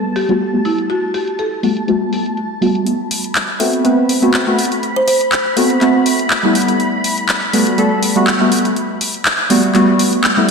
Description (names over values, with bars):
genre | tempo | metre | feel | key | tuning
deep house | 122 BPM | 4/4 | swing 54% on 16ths | A dorian | A4 = 436 Hz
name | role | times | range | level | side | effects
buzzing marimba with medium hard mallets | melody | 0.0-2.6 s | E4 to A4 | -21 LUFS | equal | tape echo
deep mellow chord stab | stabs | 0.0-10.5 s | G3 to B4 | -14 LUFS | equal | chorus, analog delay
soft string machine | texture | 0.0-10.5 s | A5 to B5 | -25 LUFS | left 1 dB | ensemble chorus
house drum kit | drums | 0.2-10.5 s | handclaps, hi-hat | -18 LUFS | left 1 dB | low-pass filter on hats, studio reverb, low-pass filter on snare
kalimba | melody | 3.6-6.3 s | A4 to C5 | -20 LUFS | equal | analog delay
room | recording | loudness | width
wet lush hall reverb, RT60 2.1 s | dreamy mix soaked in reverb | -12 LUFS | side -5 dB against mid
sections
0.0-2.9 A section; 2.9-10.5 B section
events
build-up 2.9-10.5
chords
0.0 Gmaj9; 2.9 Am69; 6.6 Gmaj9